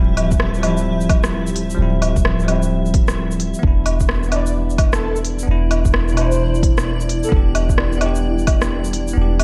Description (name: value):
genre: future garage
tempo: 130 BPM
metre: 4/4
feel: swing 63% on 16ths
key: unclear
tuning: A4 = 440 Hz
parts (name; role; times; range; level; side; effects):
- bell-like tine electric piano; accompaniment; 0.0-9.4 s; B2 to G4; -26 LUFS; equal; sidechain pumping, tape echo
- granular cloud pad; sustained chords; 0.0-9.4 s; F3 to E5; -29 LUFS; equal; built-in reverb, sidechain pumping
- soft 808-style bass; bass; 0.0-9.4 s; D1 to E1; -22 LUFS; equal; sidechain pumping
- organic electronic drum kit; drums; 0.2-9.4 s; hi-hat, rim click, shaker, woodblock; -26 LUFS; equal; overdrive
- electronic kick drum; drums; 0.3-8.6 s; none; -19 LUFS; equal; overdrive
- breathy flute-like synth lead; melody; 4.3-7.4 s; A4 to D5; -30 LUFS; equal; tremolo, ensemble chorus, tape echo
room: digital ambience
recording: dark, warm production, vinyl crackle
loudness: -18 LUFS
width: mono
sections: 0.0-9.4 A section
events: none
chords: 0.0 Dm11; 3.6 Em7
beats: 0.40 0.86 1.32 | 1.78 2.25 2.71 3.17 | 3.63 4.09 4.55 5.01 | 5.48 5.94 6.40 6.86 | 7.32 7.78 8.25 8.71 | 9.17